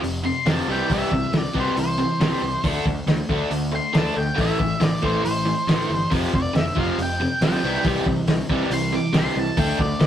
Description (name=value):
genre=classic rock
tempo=138 BPM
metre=4/4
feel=straight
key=unclear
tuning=A4 = 440 Hz
part: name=overdriven electric guitar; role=riff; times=0.0-10.1 s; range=F2 to D4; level=-24 LUFS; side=equal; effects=none
part: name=fuzz picked electric bass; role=bass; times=0.0-10.1 s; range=F1 to D2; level=-27 LUFS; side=equal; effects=overdrive
part: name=cloth-damped thuddy drum kit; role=drums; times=0.0-10.1 s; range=hi-hat, kick drum, snare drum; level=-24 LUFS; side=equal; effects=none
part: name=octave-fuzz lead guitar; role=melody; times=0.3-10.1 s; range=C5 to D6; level=-26 LUFS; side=equal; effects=distortion
room=moderate studio reverb, RT60 0.5 s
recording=rough rehearsal-room recording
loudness=-19 LUFS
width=side -10 dB against mid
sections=0.0-10.1 A section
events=lead electric guitar solo 0.0-10.1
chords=0.0 F5; 0.7 C; 2.6 D5; 4.4 Am; 6.1 F5; 7.6 C